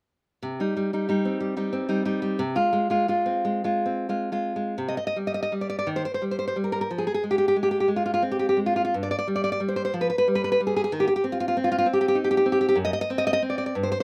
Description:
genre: romantic piece for solo classical guitar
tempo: 40-66 BPM (dotted quarters)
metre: 6/8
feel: rubato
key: C minor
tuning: A4 = 441 Hz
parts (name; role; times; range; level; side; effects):
- nylon-string guitar; solo; 0.4-14.0 s; F#2 to Eb5; -25 LUFS; equal; slapback echo
room: little or no reverb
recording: recorded outdoors, with no room sound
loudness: -25 LUFS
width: mono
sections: 0.4-4.8 A section; 4.8-14.0 B section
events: none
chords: 0.4 Cm; 2.4 Fm/C; 4.8 C5; 5.9 Eb; 6.9 Fm; 8.9 N.C.; 9.9 Fmadd9; 10.9 Cm/Eb; 12.8 D7b9/F#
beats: | 0.42 1.41 | 2.40 3.45 | 4.78 5.89 | 6.90 7.87 | 8.93 9.94 | 10.92 11.86 | 12.78 13.75

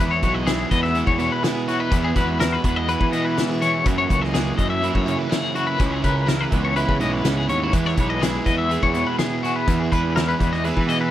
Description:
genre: math rock and midwest emo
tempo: 124 BPM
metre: 4/4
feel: straight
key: E lydian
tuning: A4 = 438 Hz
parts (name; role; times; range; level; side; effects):
- twelve-string electric guitar; accompaniment; 0.0-11.1 s; E2 to B4; -27 LUFS; right 6 dB; none
- twangy electric guitar; arpeggios; 0.0-11.1 s; F#4 to E5; -24 LUFS; left 5 dB; tremolo
- overdriven electric guitar; riff; 0.0-11.1 s; F#2 to E4; -26 LUFS; right 1 dB; none
- fuzz picked electric bass; bass; 0.0-11.1 s; B1 to E3; -24 LUFS; equal; overdrive
- loose indie drum kit; drums; 0.2-11.0 s; hi-hat, kick drum, snare drum; -23 LUFS; equal; none
room: little or no reverb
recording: none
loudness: -18 LUFS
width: side -12 dB against mid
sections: 0.0-11.1 A section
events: none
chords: 0.0 Emaj9; 3.9 F#9sus4; 5.8 C#m7; 7.7 Emaj7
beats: 0.47 0.96 1.44 | 1.92 2.41 2.89 3.37 | 3.86 4.34 4.82 5.31 | 5.79 6.28 6.76 7.25 | 7.73 8.22 8.70 9.19 | 9.67 10.16 10.64

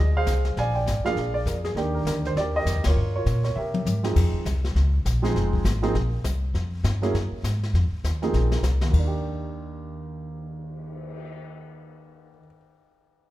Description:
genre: jazz piano trio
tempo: 201 BPM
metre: 4/4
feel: swing 60% on 8ths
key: Eb major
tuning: A4 = 440 Hz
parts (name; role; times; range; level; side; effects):
- warm grand piano; melody; 0.0-12.5 s; Eb2 to Ab5; -28 LUFS; right 2 dB; none
- upright bass; bass; 0.0-12.4 s; F1 to C3; -24 LUFS; equal; none
- jazz brush drum kit; drums; 0.3-11.3 s; brushed snare drum, crash cymbal, cymbal swell, hi-hat, kick drum, ride cymbal, snare drum, toms; -32 LUFS; left 3 dB; none
room: moderate recital hall reverb, RT60 1.5 s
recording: recorded in a church or concert hall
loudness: -22 LUFS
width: side -15 dB against mid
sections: 0.0-4.2 A section; 4.2-8.9 B section; 8.9-11.3 C section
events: band accent 2.8; drum fill 3.6-4.2, 8.3-8.9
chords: 0.0 Fm7; 0.6 Bb7; 1.8 Ebmaj7; 3.0 Gm7b5; 3.6 C7b13; 4.2 Fm7; 4.8 Bbm9; 5.4 Fm7; 6.0 Bbsus2; 6.5 N.C.; 7.1 Gbsus2; 7.7 F7(no3); 8.3 Bb9sus4; 8.9 Ebmaj7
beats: 0.28 | 0.58 0.88 1.17 1.47 | 1.77 2.07 2.37 2.67 | 2.96 3.26 3.56 3.86 | 4.16 4.46 4.76 5.05 | 5.35 5.65 5.95 6.25 | 6.55 6.85 7.14 7.44 | 7.74 8.04 8.34 8.64 | 8.94 9.23 9.53 9.83 | 10.13 10.43 10.73 11.03

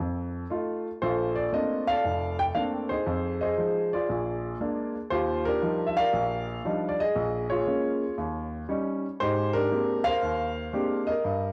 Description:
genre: solo jazz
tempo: 117 BPM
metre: 4/4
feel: swing 67% on 8ths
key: Bb major, Eb major from 5.1 s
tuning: A4 = 440 Hz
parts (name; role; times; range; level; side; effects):
- clear grand piano; solo; 0.0-11.5 s; F1 to G5; -28 LUFS; equal; cassette tape
room: light reverb, small room ambience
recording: home recording on cassette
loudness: -28 LUFS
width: mono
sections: 0.0-5.1 A section; 5.1-11.5 B section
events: none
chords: 0.0 F7; 1.0 Bbmaj9; 3.1 Fm7; 4.1 Bb7; 5.1 Ebmaj9; 7.2 Bbm7; 8.2 Eb7; 9.2 Abmaj9#11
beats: 0.00 0.51 | 1.02 1.53 2.04 2.55 | 3.07 3.58 4.09 4.60 | 5.11 5.62 6.13 6.64 | 7.16 7.67 8.18 8.69 | 9.20 9.71 10.22 10.73 | 11.24

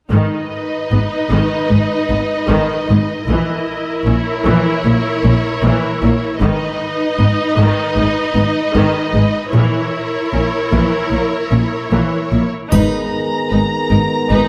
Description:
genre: cinematic, epic orchestral film score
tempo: 76 BPM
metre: 4/4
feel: straight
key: G# minor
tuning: A4 = 439 Hz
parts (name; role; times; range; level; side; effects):
- warm symphonic violin section; second line; 0.1-14.5 s; A#4 to D#5; -23 LUFS; equal; none
- warm symphonic viola section; accompaniment; 0.1-14.5 s; D#3 to E4; -22 LUFS; equal; none
- rich studio double bass section; bass; 0.1-14.4 s; G#1 to A#1; -21 LUFS; equal; none
- rich symphonic cello section; bass; 0.1-14.4 s; G#2 to A#2; -21 LUFS; equal; none
- rich symphonic violin section; melody; 12.7-14.5 s; A#5; -24 LUFS; equal; none
- mellow French horn section; sustained chords; 12.7-14.5 s; B3 to A#4; -24 LUFS; equal; none
- warm trombone section; sustained chords; 12.7-14.5 s; D#3 to G#3; -26 LUFS; equal; none
- solo taiko drums; drums; 12.7-14.3 s; none; -22 LUFS; equal; none
- triangle; percussion; 12.7-14.3 s; none; -38 LUFS; equal; none
room: moderate scoring stage reverb, RT60 1.9 s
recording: none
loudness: -16 LUFS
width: mono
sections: 0.1-12.7 A section; 12.7-14.5 B section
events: build-up 12.7-14.5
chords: 0.1 G#m; 3.3 A#dim; 6.4 G#m; 9.5 A#dim; 12.7 G#madd9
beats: | 0.12 0.92 1.71 2.50 | 3.29 4.07 4.85 5.63 | 6.41 7.19 7.97 8.75 | 9.54 10.33 11.12 11.92 | 12.72 13.51 14.31

